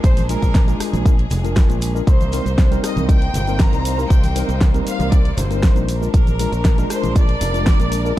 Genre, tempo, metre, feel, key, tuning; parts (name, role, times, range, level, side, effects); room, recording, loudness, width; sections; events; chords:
nu-disco, nu disco; 118 BPM; 4/4; straight; C minor; A4 = 440 Hz
clear chamber violin section; melody; 0.0-8.1 s; Bb4 to Bb5; -27 LUFS; equal; ping-pong delay
bright studio string section; sustained chords; 0.0-8.2 s; Ab3 to C5; -29 LUFS; left 2 dB; vintage 12-bit sampler grit, sidechain pumping
modern bright fingered electric bass; bass; 0.0-8.1 s; F1 to C2; -21 LUFS; equal
electronic kick drum; drums; 0.0-7.8 s; -14 LUFS; equal
pop drum kit; drums; 0.0-8.2 s; hi-hat, rim click, shaker, snare drum; -26 LUFS; right 1 dB
maracas and congas; percussion; 0.0-8.2 s; -29 LUFS; left 2 dB
tine electric piano; accompaniment; 0.3-8.1 s; G3 to Bb4; -26 LUFS; left 1 dB; medium stereo tremolo
little or no reverb; dark, warm production; -14 LUFS; side -14 dB against mid
0.0-8.2 A section
0.0 Bb7; 2.1 Cm7; 5.9 Bb7